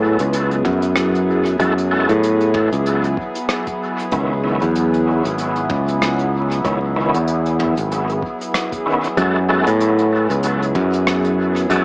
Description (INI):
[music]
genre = ambient dub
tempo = 95 BPM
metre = 4/4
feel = swing 57% on 16ths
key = unclear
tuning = A4 = 438 Hz
[part]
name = warbly tape-like pad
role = sustained chords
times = 0.0-11.8 s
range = F#3 to G#4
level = -25 LUFS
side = equal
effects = chorus, built-in reverb, phaser
[part]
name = modern bright fingered electric bass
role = bass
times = 0.0-11.8 s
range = G#1 to A2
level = -20 LUFS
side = equal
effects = tube saturation
[part]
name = soft brush drum kit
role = drums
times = 0.2-11.8 s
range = hi-hat, rim click, toms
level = -29 LUFS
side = equal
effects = dub echo
[part]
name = electronic kick drum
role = drums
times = 0.6-11.8 s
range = none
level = -32 LUFS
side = equal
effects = overdrive
[part]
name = overdriven tonewheel organ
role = stabs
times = 1.6-11.8 s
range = D#3 to A4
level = -25 LUFS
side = equal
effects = chorus vibrato, fast rotary speaker, dub echo
[sound]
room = moderate spring reverb, RT60 1.8 s, studio reverb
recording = echo-heavy mix, vinyl crackle, small speaker sound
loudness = -18 LUFS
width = mono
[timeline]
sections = 0.0-11.8 A section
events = none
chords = 0.0 F#m9; 4.1 C#m9; 9.2 F#m9